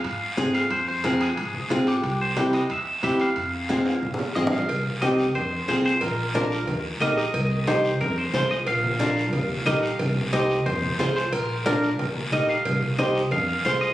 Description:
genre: latin, cumbia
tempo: 181 BPM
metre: 4/4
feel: straight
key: F harmonic minor, F minor from 4.7 s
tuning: A4 = 440 Hz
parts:
  - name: twangy electric guitar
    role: melody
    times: 0.0-13.9 s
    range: G4 to F5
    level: -27 LUFS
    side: equal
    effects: spring reverb, tape echo
  - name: upright bass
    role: bass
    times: 0.0-13.9 s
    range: Bb1 to Ab2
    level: -30 LUFS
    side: equal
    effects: none
  - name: congas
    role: percussion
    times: 0.0-13.8 s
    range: none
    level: -31 LUFS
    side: equal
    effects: none
  - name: guiro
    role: percussion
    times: 0.0-13.9 s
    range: none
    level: -36 LUFS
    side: left 2 dB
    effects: none
  - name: timbales and cowbell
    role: percussion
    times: 0.0-13.8 s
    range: none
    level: -34 LUFS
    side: right 2 dB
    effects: none
  - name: flamenco guitar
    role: accompaniment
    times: 0.4-13.9 s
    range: C4 to C5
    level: -23 LUFS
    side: equal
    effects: none
room: wet studio reverb, RT60 0.6 s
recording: recorded on a phone in the room, studio reverb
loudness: -21 LUFS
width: side -14 dB against mid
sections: 0.0-4.7 A section; 4.7-13.9 B section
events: drum fill 3.9-4.7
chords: 0.0 Fm; 2.0 C; 3.4 Fm; 4.7 Cm; 5.4 Fm; 6.0 Bb; 6.7 Eb; 7.3 Cm; 8.0 Fm; 8.7 Bb; 9.3 Eb; 10.0 Cm; 10.7 Fm; 11.3 Bb; 12.0 Eb; 12.7 Cm; 13.3 Fm

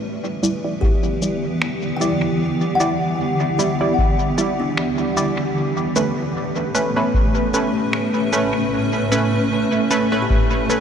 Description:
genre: ambient dub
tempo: 76 BPM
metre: 4/4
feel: swing 54% on 16ths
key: E dorian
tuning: A4 = 440 Hz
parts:
  - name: granular cloud pad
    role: sustained chords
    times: 0.0-10.8 s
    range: A2 to E5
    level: -21 LUFS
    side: equal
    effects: built-in reverb
  - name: kalimba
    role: arpeggios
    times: 0.0-10.8 s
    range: C#4 to G5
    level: -26 LUFS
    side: left 4 dB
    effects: ping-pong delay
  - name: filtered dub chord stab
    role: stabs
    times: 0.4-10.8 s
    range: G3 to D5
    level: -22 LUFS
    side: right 2 dB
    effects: chorus, dub echo
  - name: electronic shaker and finger snaps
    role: drums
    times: 0.4-10.8 s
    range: none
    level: -30 LUFS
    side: left 3 dB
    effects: studio ambience, dub echo
  - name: electronic kick drum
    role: drums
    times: 0.8-10.5 s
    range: none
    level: -19 LUFS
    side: equal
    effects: studio ambience
room: wet huge ambient reverb, RT60 7.5 s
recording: dreamy mix soaked in reverb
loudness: -17 LUFS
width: side -8 dB against mid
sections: 0.0-10.8 A section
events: none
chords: 0.0 Em7; 5.6 Aadd9

